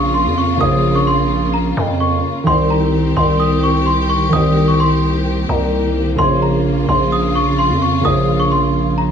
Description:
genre	hip hop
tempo	129 BPM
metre	4/4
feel	half-time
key	unclear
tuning	A4 = 440 Hz
part	worn celesta	melody	0.0-9.1 s	Bb5 to Eb6	-18 LUFS	left 1 dB	low-pass filter
part	dark baby grand piano	accompaniment	0.0-9.1 s	Db3 to Db5	-20 LUFS	right 1 dB	low-pass filter
part	warm symphonic string section	sustained chords	0.0-9.1 s	Db3 to G4	-20 LUFS	left 1 dB	none
part	growling 808-style bass	bass	0.0-9.1 s	Bb1 to F2	-17 LUFS	equal	none
room	light reverb, small room ambience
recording	studio reverb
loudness	-13 LUFS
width	side -7 dB against mid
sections	0.0-9.1 A section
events	none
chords	0.0 Bbm; 2.5 Cm; 6.2 Bbm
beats	0.14 | 0.61 1.07 1.54 2.00 | 2.47 2.93 3.40 3.86 | 4.33 4.79 5.26 5.72 | 6.19 6.66 7.12 7.58 | 8.05 8.52 8.98

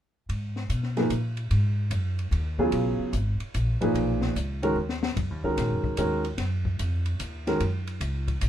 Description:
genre	modal jazz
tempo	148 BPM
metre	3/4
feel	swing 66% on 8ths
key	G# dorian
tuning	A4 = 438 Hz
part	upright bass	bass	0.3-8.5 s	G#1 to B2	-27 LUFS	equal	none
part	open jazz drum kit	drums	0.3-8.5 s	hi-hat, kick drum, ride cymbal, snare drum	-35 LUFS	left 3 dB	none
part	warm upright piano	accompaniment	1.0-7.6 s	A#2 to B4	-25 LUFS	right 1 dB	none
room	moderate small room reverb, RT60 0.5 s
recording	minimal, uncompressed stereo recording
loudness	-25 LUFS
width	side -10 dB against mid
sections	0.3-8.5 A section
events	drum fill 4.8-5.2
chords	0.3 G#m9; 5.2 G#7sus2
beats	| 0.29 0.70 1.10 | 1.51 1.92 2.32 | 2.73 3.14 3.54 | 3.95 4.36 4.76 | 5.17 5.57 5.98 | 6.39 6.79 7.20 | 7.60 8.01 8.42

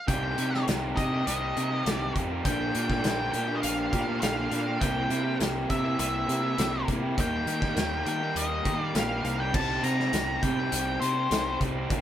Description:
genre	indie rock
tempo	102 BPM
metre	4/4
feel	straight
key	unclear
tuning	A4 = 439 Hz
part	octave-fuzz lead guitar	melody	0.0-11.6 s	C5 to Bb5	-31 LUFS	left 1 dB	distortion
part	raw garage guitar	riff	0.1-12.0 s	Bb2 to G4	-30 LUFS	equal	overdrive
part	fuzz picked electric bass	bass	0.1-12.0 s	Bb1 to Eb3	-32 LUFS	right 1 dB	overdrive
part	loose indie drum kit	drums	0.1-12.0 s	crash cymbal, hi-hat, kick drum, snare drum	-31 LUFS	equal	none
room	light reverb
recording	band playing live in one room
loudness	-25 LUFS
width	side -10 dB against mid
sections	0.1-12.0 A section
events	none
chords	0.1 Cm; 2.4 Gm7/Bb; 4.8 C7; 7.2 Eb; 9.5 Cm7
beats	| 0.08 0.68 1.27 1.86 | 2.45 3.04 3.63 4.22 | 4.81 5.40 6.00 6.59 | 7.18 7.77 8.36 8.95 | 9.54 10.13 10.72 11.31 | 11.91

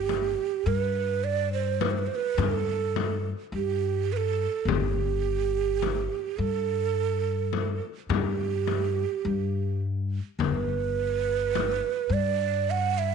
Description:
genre	Turkish makam ensemble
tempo	105 BPM (eighths)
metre	10/8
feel	straight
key	G makam rast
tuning	A4 = 440 Hz
part	breathy mellow ney	melody	0.0-13.1 s	G4 to F#5	-27 LUFS	right 12 dB	none
part	upright bass	bass	0.0-13.1 s	G1 to G2	-29 LUFS	left 3 dB	none
part	frame drum	percussion	0.1-11.8 s	none	-31 LUFS	left 14 dB	none
room	light reverb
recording	1960s-style stereo with parts hard left and right, nothing above 10.8 kHz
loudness	-25 LUFS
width	side -6 dB against mid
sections	0.0-13.1 A section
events	none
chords	none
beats	0.09 0.66 1.23 1.81 2.38 2.95 3.53 4.10 | 4.67 5.24 5.82 6.39 6.96 7.53 8.11 8.68 9.25 9.82 | 10.40 10.97 11.54 12.12 12.69

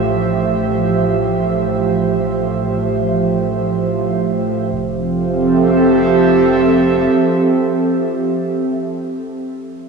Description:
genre	ambient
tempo	free time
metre	none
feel	none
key	F major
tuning	A4 = 440 Hz
part	airy breathy pad	sustained chords	0.0-8.7 s	A2 to E5	-14 LUFS	right 2 dB	chorus
part	warm sub bass	bass	0.0-7.1 s	F1 to A1	-29 LUFS	right 2 dB	tube saturation
room	wet cathedral reverb, RT60 5.8 s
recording	cassette tape, small room ambience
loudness	-13 LUFS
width	side -4 dB against mid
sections	0.0-4.7 A section; 4.7-7.9 B section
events	none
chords	0.0 Fmaj7/A; 4.7 Fmaj7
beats	free time

